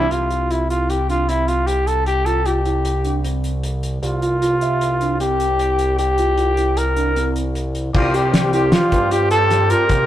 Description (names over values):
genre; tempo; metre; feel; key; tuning
progressive instrumental, band music in an uneven meter; 153 BPM; 5/4; straight; C mixolydian; A4 = 440 Hz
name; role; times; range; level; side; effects
breathy trumpet; melody; 0.0-10.1 s; E4 to Bb4; -19 LUFS; equal; none
overdriven tonewheel organ; accompaniment; 0.0-0.1, 7.9-10.1 s; G3 to G4; -24 LUFS; left 3 dB; none
mellow tine electric piano; arpeggios; 0.0-9.8 s; C4 to E5; -25 LUFS; right 2 dB; none
smooth synth bass; bass; 0.0-10.1 s; C2 to G2; -21 LUFS; equal; none
cloth-damped thuddy drum kit; drums; 0.1-10.0 s; crash cymbal, hi-hat, kick drum, snare drum; -23 LUFS; equal; none
room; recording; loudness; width
moderate stone room reverb, RT60 1.5 s; rough rehearsal-room recording, tube saturation; -16 LUFS; side -12 dB against mid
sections
0.1-7.9 A section; 7.9-10.1 B section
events
none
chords
0.1 Csus4